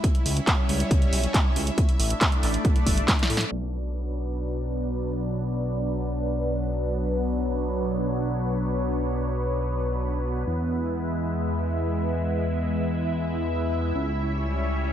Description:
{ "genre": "uplifting trance", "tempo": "free time", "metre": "none", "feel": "none", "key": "B minor", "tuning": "A4 = 440 Hz", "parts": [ { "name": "supersaw pad", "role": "sustained chords", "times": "0.0-14.9 s", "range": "F#3 to E5", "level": "-28 LUFS", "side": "equal", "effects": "phaser, sidechain pumping" }, { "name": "electronic kick drum", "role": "drums", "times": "0.0-3.2 s", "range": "none", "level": "-22 LUFS", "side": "equal", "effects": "none" }, { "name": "punchy analog drum machine", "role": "drums", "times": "0.0-3.5 s", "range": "handclaps, hi-hat, snare drum", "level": "-27 LUFS", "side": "right 1 dB", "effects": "sidechain pumping on hats" }, { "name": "fat analog bass", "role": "bass", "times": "0.3-14.9 s", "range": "G1 to A2", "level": "-28 LUFS", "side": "equal", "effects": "sidechain pumping" } ], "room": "light reverb", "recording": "low-pass filter", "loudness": "-23 LUFS", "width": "side -10 dB against mid", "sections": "0.0-3.5 A section; 3.5-14.9 B section", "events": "drum fill 3.1-3.5; band accent 3.4; filter sweep 3.5-14.9", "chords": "0.0 C#dim; 1.8 Asus4; 3.5 Bm; 10.5 E; 14.0 C#dim" }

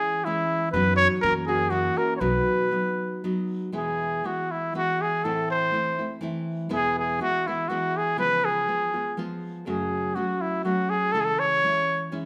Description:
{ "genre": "mexican folk, mariachi", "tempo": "122 BPM", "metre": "3/4", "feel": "swing 53% on 8ths", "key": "B major, E major from 3.7 s", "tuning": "A4 = 439 Hz", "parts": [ { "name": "warm trumpet", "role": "melody", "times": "0.0-12.1 s", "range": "E4 to C#5", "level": "-26 LUFS", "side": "equal", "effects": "none" }, { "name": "nylon-string guitar", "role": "accompaniment", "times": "0.0-12.3 s", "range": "E2 to F#4", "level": "-31 LUFS", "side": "equal", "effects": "none" }, { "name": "upright bass", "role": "bass", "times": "0.7-2.4 s", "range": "B1 to F#2", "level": "-33 LUFS", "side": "equal", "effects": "none" } ], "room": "moderate recital hall reverb, RT60 1.4 s", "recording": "none", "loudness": "-25 LUFS", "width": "mono", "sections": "0.0-3.7 A section; 3.7-12.3 B section", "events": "none", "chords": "0.0 C#m; 0.7 B/F#; 1.2 F#7; 2.2 B; 3.7 E; 5.2 Am; 6.7 E; 8.2 C#7; 9.7 F#m; 11.1 C#m" }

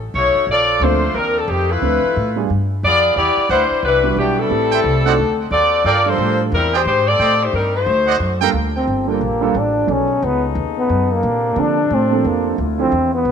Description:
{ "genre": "jazz, big band swing", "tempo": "178 BPM", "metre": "4/4", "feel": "swing 63% on 8ths", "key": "unclear", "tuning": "A4 = 441 Hz", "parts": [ { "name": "upright bass", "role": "bass", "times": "0.0-13.3 s", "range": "G1 to D3", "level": "-21 LUFS", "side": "equal", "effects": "none" }, { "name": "warm saxophone section", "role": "melody", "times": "0.2-8.4 s", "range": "Eb3 to D5", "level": "-15 LUFS", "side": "left 2 dB", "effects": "none" }, { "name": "warm concert grand piano", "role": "accompaniment", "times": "0.8-12.9 s", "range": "F3 to B4", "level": "-22 LUFS", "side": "right 10 dB", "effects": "none" }, { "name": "warm trumpet section", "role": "stabs", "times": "3.5-8.5 s", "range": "G#4 to G5", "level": "-22 LUFS", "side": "right 9 dB", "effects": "tape echo" }, { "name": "bright trombone section", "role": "sustained chords", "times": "8.5-13.3 s", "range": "C3 to B4", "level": "-26 LUFS", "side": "left 11 dB", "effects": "none" }, { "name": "warm trombone", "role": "melody", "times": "8.8-13.3 s", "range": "Bb3 to D4", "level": "-18 LUFS", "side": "equal", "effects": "none" } ], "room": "moderate echo chamber reverb, RT60 1.9 s, small room reverb", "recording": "1960s-style stereo with parts hard left and right", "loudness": "-14 LUFS", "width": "side -7 dB against mid", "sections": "0.0-8.5 A section; 8.5-13.3 B section", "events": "trombone solo 8.5-13.3", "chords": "0.5 Bbmaj9; 1.8 Dm9; 2.5 G7b9; 3.2 Cmaj9#11; 4.5 Am7; 5.2 D7b9; 5.8 Gm9; 6.5 E7alt; 7.2 Am7b5; 7.9 D7b9; 8.5 Gm9; 9.9 B9; 11.2 Bbmaj9; 12.6 Dm9" }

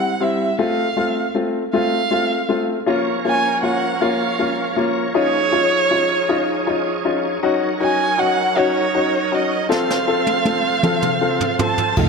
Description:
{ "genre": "six-eight pop ballad", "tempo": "53 BPM (dotted quarters)", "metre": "6/8", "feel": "straight", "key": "unclear", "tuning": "A4 = 440 Hz", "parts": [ { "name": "warm violin", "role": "melody", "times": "0.0-12.1 s", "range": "Db5 to A5", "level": "-20 LUFS", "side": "right 3 dB", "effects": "none" }, { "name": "bright upright piano", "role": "accompaniment", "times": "0.0-12.1 s", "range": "G3 to A4", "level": "-19 LUFS", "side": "left 3 dB", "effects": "none" }, { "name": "bright tonewheel organ", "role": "sustained chords", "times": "2.9-12.1 s", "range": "F3 to Db5", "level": "-25 LUFS", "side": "right 2 dB", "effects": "overdrive, chorus vibrato, slow rotary speaker" }, { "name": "jazz brush drum kit", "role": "drums", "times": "9.7-12.1 s", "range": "crash cymbal, kick drum, snare drum, toms", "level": "-22 LUFS", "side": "right 1 dB", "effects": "none" }, { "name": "picked steel-string acoustic guitar", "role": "arpeggios", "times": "12.0-12.1 s", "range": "F2 to F4", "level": "-20 LUFS", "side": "right 12 dB", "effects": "none" }, { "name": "vintage muted fingered electric bass", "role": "bass", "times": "12.0-12.1 s", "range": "F1", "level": "-20 LUFS", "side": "right 1 dB", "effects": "none" } ], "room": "moderate concert hall reverb, RT60 2.0 s", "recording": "none", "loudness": "-16 LUFS", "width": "side -4 dB against mid", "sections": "0.0-12.0 A section", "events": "drum fill 9.7-12.0", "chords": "0.0 C; 0.6 F; 2.9 Bbm; 5.1 Dbadd9; 7.4 Ebm7; 9.7 F" }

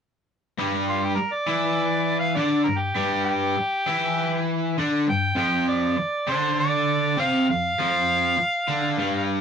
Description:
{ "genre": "rock", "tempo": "100 BPM", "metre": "4/4", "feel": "straight", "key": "unclear", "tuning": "A4 = 440 Hz", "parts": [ { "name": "crunchy overdriven guitar", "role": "riff", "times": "0.6-9.4 s", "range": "F2 to E4", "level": "-23 LUFS", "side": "equal", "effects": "none" }, { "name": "mellow harmonica", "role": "melody", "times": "0.9-9.2 s", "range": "F4 to G5", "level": "-24 LUFS", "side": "equal", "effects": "overdrive" } ], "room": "wet booth ambience, RT60 0.2 s", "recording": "rough rehearsal-room recording", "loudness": "-21 LUFS", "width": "side -7 dB against mid", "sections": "0.6-9.4 A section", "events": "none", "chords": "0.6 G5; 5.4 F5" }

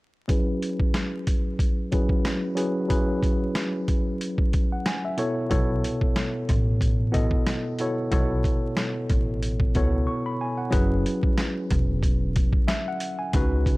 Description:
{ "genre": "hip hop, boom-bap hip-hop", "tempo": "92 BPM", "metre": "4/4", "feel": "swing 55% on 16ths", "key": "F# minor", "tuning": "A4 = 441 Hz", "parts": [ { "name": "mellow tine electric piano", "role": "accompaniment", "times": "0.3-13.8 s", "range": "B2 to C#6", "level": "-27 LUFS", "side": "equal", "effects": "medium stereo tremolo, cassette tape, high-pass filter, low-pass filter" }, { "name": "boom bap sampler-style drum kit", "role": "drums", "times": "0.3-13.8 s", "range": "hi-hat, kick drum, rim click, snare drum", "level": "-24 LUFS", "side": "equal", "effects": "vintage 12-bit sampler grit" }, { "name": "upright bass", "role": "bass", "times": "5.5-13.6 s", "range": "E1 to C#2", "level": "-26 LUFS", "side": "equal", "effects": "none" } ], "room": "little or no reverb", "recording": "dry, gritty hardware recording, vinyl crackle", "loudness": "-22 LUFS", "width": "side -22 dB against mid", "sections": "0.3-10.7 A section; 10.7-13.8 B section", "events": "filter sweep on tine electric piano 0.3-10.7; break 10.1-10.7", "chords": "0.3 F#9sus4; 5.2 B9sus4; 10.7 F#9sus4" }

